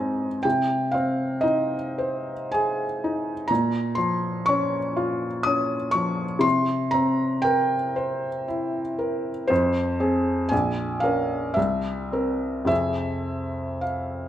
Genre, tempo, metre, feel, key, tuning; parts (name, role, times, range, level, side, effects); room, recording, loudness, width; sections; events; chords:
classical, romantic nocturne for solo piano; 51-64 BPM; 3/4; rubato; F minor; A4 = 443 Hz
felt-muted upright piano; solo; 0.0-14.3 s; Bb1 to Eb6; -22 LUFS; equal
moderate recital hall reverb, RT60 1.3 s; close, detailed microphones; -22 LUFS; side -11 dB against mid
0.0-14.3 A section
0.5 Ab/C; 3.5 Bbm; 6.4 C7; 9.5 Fm; 10.5 Bbm7; 11.6 C7; 12.7 Fm